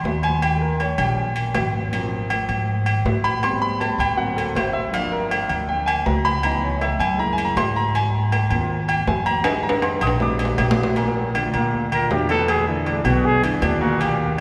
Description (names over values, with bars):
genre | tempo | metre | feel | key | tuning
Afro-Cuban jazz | 159 BPM | 4/4 | straight | unclear | A4 = 445 Hz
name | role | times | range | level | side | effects
warm grand piano | accompaniment | 0.0-14.4 s | Bb2 to Eb6 | -26 LUFS | equal | none
upright bass | bass | 0.0-14.4 s | G1 to A2 | -26 LUFS | equal | none
timbales and agogo bells | percussion | 0.1-14.2 s | none | -26 LUFS | equal | none
dark trumpet | melody | 11.9-14.4 s | B3 to Bb4 | -24 LUFS | equal | none
room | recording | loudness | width
wet cathedral reverb, RT60 4.8 s | recorded in a church or concert hall | -21 LUFS | mono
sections
0.0-11.0 A section; 11.0-14.4 A section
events
grand piano solo 0.0-11.0; drum fill 9.5-11.0; trumpet solo 11.0-14.4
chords
0.4 Eb9; 1.9 Ab6; 3.4 Am9; 4.2 D7b13; 4.9 Gm7; 6.4 Dbm7; 7.2 Gb9; 7.9 Ab6; 9.5 Fm9; 10.2 Bb13; 11.0 Bb; 12.5 E5